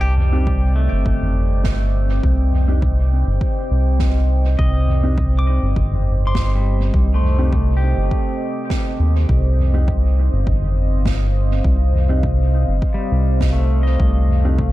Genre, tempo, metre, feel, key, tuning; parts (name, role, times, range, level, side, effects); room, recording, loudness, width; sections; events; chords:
ambient dub; 102 BPM; 4/4; straight; C dorian; A4 = 440 Hz
deep dark ambient pad; sustained chords; 0.0-14.7 s; C4 to D6; -26 LUFS; right 1 dB; chorus, built-in reverb
pedal steel guitar; arpeggios; 0.0-14.7 s; G3 to D6; -28 LUFS; left 2 dB; analog delay
round analog bass; bass; 0.0-14.7 s; G1 to Eb2; -16 LUFS; equal
soft-mallet drum kit; drums; 0.2-14.4 s; snare drum, toms; -27 LUFS; equal; dub echo
mellow electric guitar; stabs; 0.3-14.6 s; C4 to G4; -30 LUFS; left 1 dB; dub echo
electronic kick drum; drums; 0.5-14.7 s; -21 LUFS; equal; overdrive
small room ambience; echo-heavy mix; -15 LUFS; side -16 dB against mid
0.0-14.7 A section
0.0 Cmadd9